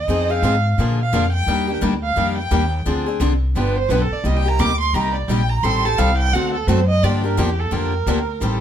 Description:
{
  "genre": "acoustic string swing (jazz manouche)",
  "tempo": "173 BPM",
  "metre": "4/4",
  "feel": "swing 60% on 8ths",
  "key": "G minor",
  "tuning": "A4 = 440 Hz",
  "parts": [
    { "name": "warm violin", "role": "second line", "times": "0.0-8.4 s", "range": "G4 to D6", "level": "-22 LUFS", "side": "right 4 dB", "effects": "none" },
    { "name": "upright bass", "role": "bass", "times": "0.0-8.6 s", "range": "G1 to Bb2", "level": "-20 LUFS", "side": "equal", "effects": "none" },
    { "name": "picked steel-string acoustic guitar", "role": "accompaniment", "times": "0.1-8.6 s", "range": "C3 to A4", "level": "-23 LUFS", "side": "left 4 dB", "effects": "none" },
    { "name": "picked steel-string acoustic guitar", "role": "accompaniment", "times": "0.1-8.6 s", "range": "C3 to A4", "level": "-27 LUFS", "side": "right 4 dB", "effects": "none" }
  ],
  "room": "light reverb",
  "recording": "none",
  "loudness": "-16 LUFS",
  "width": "side -9 dB against mid",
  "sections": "0.0-8.6 A section",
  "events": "violin solo 0.0-8.6",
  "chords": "0.1 Fm7; 0.8 Bb7; 1.5 Ebmaj7; 2.9 Dm7b5; 3.6 G7; 4.2 Cm7; 5.6 Am7b5; 6.3 D7; 7.0 Gm7"
}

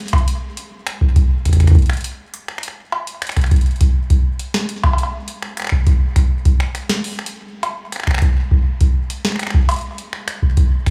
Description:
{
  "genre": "IDM",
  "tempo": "102 BPM",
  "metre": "4/4",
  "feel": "straight",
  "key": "none",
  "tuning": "none",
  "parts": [
    { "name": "booming analog drum machine", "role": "drums", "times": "0.1-10.9 s", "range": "cowbell, finger snaps, hi-hat, snare drum", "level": "-26 LUFS", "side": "equal", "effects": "digital delay" },
    { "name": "electronic kick drum", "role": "drums", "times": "0.1-10.9 s", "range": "none", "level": "-16 LUFS", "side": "equal", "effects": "none" }
  ],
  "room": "little or no reverb",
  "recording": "small room ambience",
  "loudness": "-17 LUFS",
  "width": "mono",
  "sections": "0.0-10.9 A section",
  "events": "none",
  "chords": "none"
}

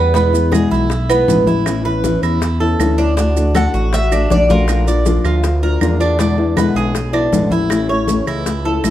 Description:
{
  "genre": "latin, Cuban son and guajira",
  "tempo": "159 BPM",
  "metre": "4/4",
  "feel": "straight",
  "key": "unclear",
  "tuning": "A4 = 440 Hz",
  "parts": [
    { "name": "nylon-string guitar", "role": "accompaniment", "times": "0.0-8.9 s", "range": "B2 to G4", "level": "-18 LUFS", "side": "left 3 dB", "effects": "none" },
    { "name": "Cuban tres", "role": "arpeggios", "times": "0.0-8.9 s", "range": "B3 to D5", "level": "-20 LUFS", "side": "right 4 dB", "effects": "none" },
    { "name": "smooth synth bass", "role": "bass", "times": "0.0-8.9 s", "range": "A1 to E2", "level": "-17 LUFS", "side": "right 1 dB", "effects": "none" },
    { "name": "bongos", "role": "percussion", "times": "0.1-8.9 s", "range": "none", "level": "-26 LUFS", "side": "left 4 dB", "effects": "none" },
    { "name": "congas", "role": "percussion", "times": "0.1-8.9 s", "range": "none", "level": "-23 LUFS", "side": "left 2 dB", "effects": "none" },
    { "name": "maracas", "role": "percussion", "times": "0.2-8.9 s", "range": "none", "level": "-32 LUFS", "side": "right 8 dB", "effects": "none" },
    { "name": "claves", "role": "percussion", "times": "0.5-8.9 s", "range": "none", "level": "-29 LUFS", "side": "right 9 dB", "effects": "none" },
    { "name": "Cuban tres", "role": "melody", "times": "3.6-6.0 s", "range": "Bb4 to F#5", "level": "-20 LUFS", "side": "left 3 dB", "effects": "plate reverb" }
  ],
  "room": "moderate large studio reverb, RT60 1.1 s",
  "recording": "dark, warm production",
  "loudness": "-13 LUFS",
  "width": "side -12 dB against mid",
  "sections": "0.0-8.9 A section",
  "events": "none",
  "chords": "0.1 E; 1.7 Aadd9; 3.2 D; 4.7 Bb; 6.2 E7; 7.7 A"
}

